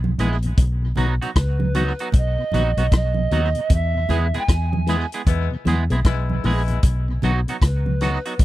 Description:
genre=roots reggae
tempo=77 BPM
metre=4/4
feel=swing 62% on 16ths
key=B major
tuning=A4 = 440 Hz
part: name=vintage muted fingered electric bass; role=bass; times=0.0-8.4 s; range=A#1 to E2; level=-21 LUFS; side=equal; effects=none
part: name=congas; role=percussion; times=0.0-8.4 s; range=none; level=-29 LUFS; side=right 6 dB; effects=none
part: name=mellow tonewheel organ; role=accompaniment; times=0.1-8.1 s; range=E2 to B3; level=-26 LUFS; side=left 3 dB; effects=slow rotary speaker
part: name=clean electric guitar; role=accompaniment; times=0.2-8.3 s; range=F#3 to G#4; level=-27 LUFS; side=right 4 dB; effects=analog chorus, tape echo
part: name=vintage drum kit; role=drums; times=0.2-8.4 s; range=hi-hat, kick drum, rim click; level=-18 LUFS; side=equal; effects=none
part: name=polished pan flute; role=melody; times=1.4-8.4 s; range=B4 to G#5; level=-26 LUFS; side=right 4 dB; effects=tape echo
part: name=clear horn section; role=second line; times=5.3-6.8 s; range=G#3 to E4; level=-30 LUFS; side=left 8 dB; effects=tape echo
room=little or no reverb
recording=dry, close 1970s-style studio recording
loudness=-18 LUFS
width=side -16 dB against mid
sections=0.0-8.4 A section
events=band accent 3.7-6.8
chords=0.0 E; 0.6 B; 3.7 E; 6.8 B

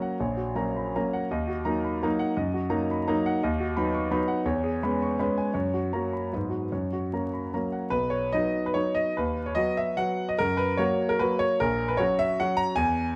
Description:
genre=classical, romantic triple-time dance for piano with dotted rhythms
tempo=132-180 BPM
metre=3/4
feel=rubato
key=B major from 3.4 s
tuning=A4 = 440 Hz
part: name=warm grand piano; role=solo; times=0.0-13.2 s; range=A#1 to C#6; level=-27 LUFS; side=equal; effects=none
room=light reverb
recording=close, detailed microphones, vinyl crackle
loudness=-27 LUFS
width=mono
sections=0.0-7.9 A section; 7.9-13.2 B section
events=none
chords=0.2 F#/A#; 1.3 D#m; 2.4 D#m/F#; 3.4 B/D#; 4.5 C#m7/E; 5.6 F#; 6.3 G#m7; 6.7 F#; 7.9 B; 9.2 B/D#; 10.4 F#; 11.6 F#/A#

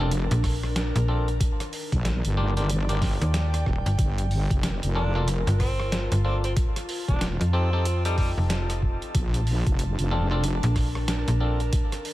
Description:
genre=glitch hop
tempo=93 BPM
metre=4/4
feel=swing 61% on 16ths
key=unclear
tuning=A4 = 441 Hz
part: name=overdriven clav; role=stabs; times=0.0-11.6 s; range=Bb3 to A4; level=-34 LUFS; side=left 2 dB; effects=sidechain pumping, dub echo
part: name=wobble bass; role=bass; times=0.0-10.6 s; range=Eb1 to Bb1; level=-25 LUFS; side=equal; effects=chorus
part: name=airy breathy pad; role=texture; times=0.0-12.1 s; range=Eb3 to A5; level=-33 LUFS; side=equal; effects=chorus, sidechain pumping
part: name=boom bap sampler-style drum kit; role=drums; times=0.1-12.1 s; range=hi-hat, rim click, snare drum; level=-32 LUFS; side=equal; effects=studio reverb
part: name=slap-like FM bass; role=bass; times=0.3-11.7 s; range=F1 to F2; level=-24 LUFS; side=equal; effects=none
part: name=electronic kick drum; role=drums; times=0.4-11.9 s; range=none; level=-25 LUFS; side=equal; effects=studio reverb
part: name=bright tenor saxophone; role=melody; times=5.0-8.3 s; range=G3 to D4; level=-34 LUFS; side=right 1 dB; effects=vintage 12-bit sampler grit, dub echo
room=little or no reverb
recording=echo-heavy mix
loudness=-22 LUFS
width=side -16 dB against mid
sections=0.0-12.1 A section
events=none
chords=0.0 Bbmaj7; 1.4 Ebmaj7; 4.0 Gm9; 6.6 F7; 9.1 Bbmaj7

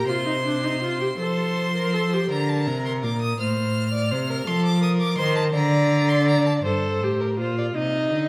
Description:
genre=classical, baroque-style fugue for string quartet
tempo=55 BPM (dotted quarters)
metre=6/8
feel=straight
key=Bb major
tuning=A4 = 440 Hz
part: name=clear violin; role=melody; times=0.0-6.5 s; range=A5 to F6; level=-31 LUFS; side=equal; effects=none
part: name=dark violin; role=second line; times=0.0-8.3 s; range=A4 to Eb5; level=-30 LUFS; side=equal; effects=none
part: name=rich viola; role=accompaniment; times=0.0-2.3, 6.7-8.3 s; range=D4 to Bb4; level=-29 LUFS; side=equal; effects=none
part: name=rich cello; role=bass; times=0.0-8.3 s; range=G2 to F3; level=-25 LUFS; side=equal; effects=none
room=moderate concert hall reverb, RT60 1.7 s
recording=none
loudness=-23 LUFS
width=mono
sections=0.0-2.3 A section; 2.3-6.7 B section; 6.7-8.3 A section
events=none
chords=0.1 F5/C; 1.2 F; 2.3 Bb; 3.4 F/A; 4.5 F7; 5.6 Bb/D; 6.7 Gm; 7.8 Cm

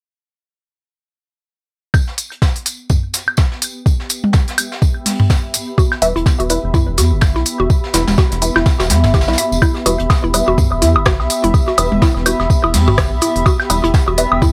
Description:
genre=minimal techno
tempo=125 BPM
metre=4/4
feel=swing 58% on 16ths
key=E minor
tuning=A4 = 441 Hz
part: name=electronic kick drum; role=drums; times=1.9-14.5 s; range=none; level=-16 LUFS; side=equal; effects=none
part: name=jazz brush drum kit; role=drums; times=1.9-14.5 s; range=hi-hat, snare drum, tambourine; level=-29 LUFS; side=equal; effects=high-pass filter on hats, high-pass filter on snare, high-pass filter on perc, high-pass filter on room
part: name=electronic woodblock and toms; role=percussion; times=1.9-14.5 s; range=none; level=-20 LUFS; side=equal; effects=delay
part: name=granular cloud pad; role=texture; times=3.3-14.5 s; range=B3 to B5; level=-24 LUFS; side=equal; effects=built-in reverb, sidechain pumping
part: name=minimal click drum kit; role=drums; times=2.2-14.3 s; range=hi-hat, rim click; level=-20 LUFS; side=equal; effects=none
part: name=mallet-like synth pluck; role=riff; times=5.8-14.5 s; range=E4 to E5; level=-22 LUFS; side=equal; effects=chorus, sidechain pumping, delay
part: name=filtered dub chord stab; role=stabs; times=6.0-14.3 s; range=G3 to B4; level=-22 LUFS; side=equal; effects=phaser, ensemble chorus, delay
part: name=rubbery square bass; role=bass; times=6.0-14.4 s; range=E1 to E2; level=-20 LUFS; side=equal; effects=sidechain pumping
room=light reverb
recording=none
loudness=-15 LUFS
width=mono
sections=1.9-9.6 A section; 9.6-14.5 B section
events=none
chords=1.9 Em

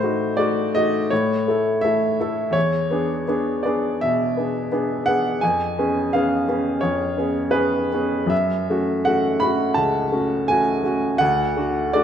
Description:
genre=classical, romantic character piece for solo piano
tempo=83 BPM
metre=4/4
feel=rubato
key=A major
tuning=A4 = 440 Hz
part: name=clear upright piano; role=solo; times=0.0-12.0 s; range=C#2 to B5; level=-18 LUFS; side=equal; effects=none
room=moderate recital hall reverb, RT60 1.4 s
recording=dark, warm production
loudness=-18 LUFS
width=side -8 dB against mid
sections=0.0-12.0 A section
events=none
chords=0.0 Adim7; 1.1 A; 2.5 E7; 5.4 C#7/E#; 8.3 F#m7; 11.2 D

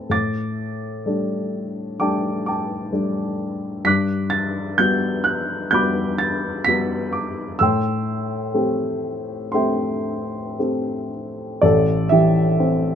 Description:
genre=classical, lyrical solo piano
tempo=64 BPM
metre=4/4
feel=rubato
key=A dorian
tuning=A4 = 438 Hz
part: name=dark upright piano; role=solo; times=0.0-12.9 s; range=A1 to B6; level=-19 LUFS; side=equal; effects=none
room=light reverb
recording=close, detailed microphones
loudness=-19 LUFS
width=side -8 dB against mid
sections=0.0-11.6 A section; 11.6-12.9 B section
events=none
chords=0.1 Dsus4/A; 3.9 Gmaj7; 7.6 Am7

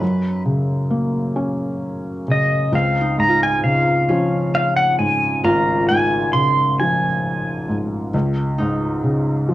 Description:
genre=acoustic folk-pop ballad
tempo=44 BPM (dotted quarters)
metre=6/8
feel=straight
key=Db major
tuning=A4 = 439 Hz
part: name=felt-muted upright piano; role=accompaniment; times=0.0-9.5 s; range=Ab1 to Db4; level=-19 LUFS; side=equal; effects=cassette tape
part: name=Celtic harp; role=arpeggios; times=0.0-9.5 s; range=C4 to F4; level=-24 LUFS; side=equal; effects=cassette tape, plate reverb
part: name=pedal steel guitar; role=melody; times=2.3-7.8 s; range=Eb5 to C6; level=-18 LUFS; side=equal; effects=cassette tape, plate reverb
room=moderate studio reverb, RT60 0.6 s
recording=home recording on cassette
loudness=-16 LUFS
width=side -15 dB against mid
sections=0.0-9.5 A section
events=none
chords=0.0 Gbmaj7; 2.7 Dbmaj7; 8.1 Db

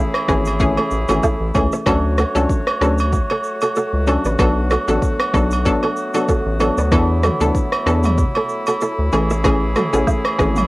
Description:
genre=afrobeats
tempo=95 BPM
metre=4/4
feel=swing 55% on 16ths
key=A major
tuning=A4 = 440 Hz
part: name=hollow square pluck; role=accompaniment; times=0.0-10.7 s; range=E3 to A4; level=-20 LUFS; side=left 2 dB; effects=chorus
part: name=warm woodwind section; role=sustained chords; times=0.0-10.7 s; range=C#3 to C#5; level=-26 LUFS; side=left 1 dB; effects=none
part: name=deep house drum kit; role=drums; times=0.1-10.7 s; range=kick drum, rim click, shaker, toms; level=-21 LUFS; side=equal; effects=cassette tape
part: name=agogo bells and woodblock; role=percussion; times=0.1-10.7 s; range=none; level=-24 LUFS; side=right 4 dB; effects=none
part: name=kora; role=riff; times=0.3-10.5 s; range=E4 to E5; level=-23 LUFS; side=right 2 dB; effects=tape echo
part: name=round analog bass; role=bass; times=0.3-10.6 s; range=G#1 to E2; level=-19 LUFS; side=equal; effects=none
room=light reverb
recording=home recording on cassette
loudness=-15 LUFS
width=side -20 dB against mid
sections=0.0-10.7 A section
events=none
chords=0.0 Amaj7; 1.9 Dmaj7; 6.9 E7sus4; 9.1 Amaj7

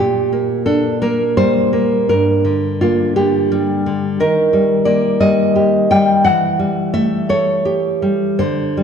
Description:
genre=romantic piece for solo classical guitar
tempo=57 BPM (dotted quarters)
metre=6/8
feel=uneven beats, rubato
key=G minor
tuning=A4 = 445 Hz
part: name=nylon-string guitar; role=solo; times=0.0-8.8 s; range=G2 to G5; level=-13 LUFS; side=equal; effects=none
room=wet concert hall reverb, RT60 1.9 s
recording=dark, warm production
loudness=-13 LUFS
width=side -7 dB against mid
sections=0.0-8.8 A section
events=none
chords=0.0 Gm/Bb; 2.1 Gm; 4.2 Eb; 6.3 A7/E

